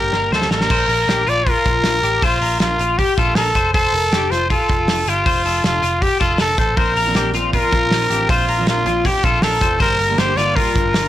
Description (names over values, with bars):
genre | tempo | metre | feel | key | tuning
jangly indie pop | 158 BPM | 4/4 | straight | Bb major | A4 = 437 Hz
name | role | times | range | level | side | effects
growling trumpet | melody | 0.0-11.1 s | F4 to D5 | -18 LUFS | equal | none
picked steel-string acoustic guitar | accompaniment | 0.0-0.7, 6.8-11.1 s | G2 to G4 | -27 LUFS | right 6 dB | none
electric guitar at the edge of break-up | arpeggios | 0.0-11.1 s | F4 to C5 | -22 LUFS | left 6 dB | analog chorus, digital delay
vintage muted picked electric bass | bass | 0.0-11.1 s | F1 to D2 | -24 LUFS | equal | none
loose indie drum kit | drums | 0.1-11.0 s | crash cymbal, hi-hat, kick drum, snare drum | -20 LUFS | right 1 dB | none
room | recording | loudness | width
light reverb | blown-out, overdriven recording, overdrive | -14 LUFS | side -13 dB against mid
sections
0.7-11.1 A section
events
drum fill 0.0-0.7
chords
0.0 Bbadd9; 0.7 Bbsus2; 3.6 F; 6.8 Bbadd9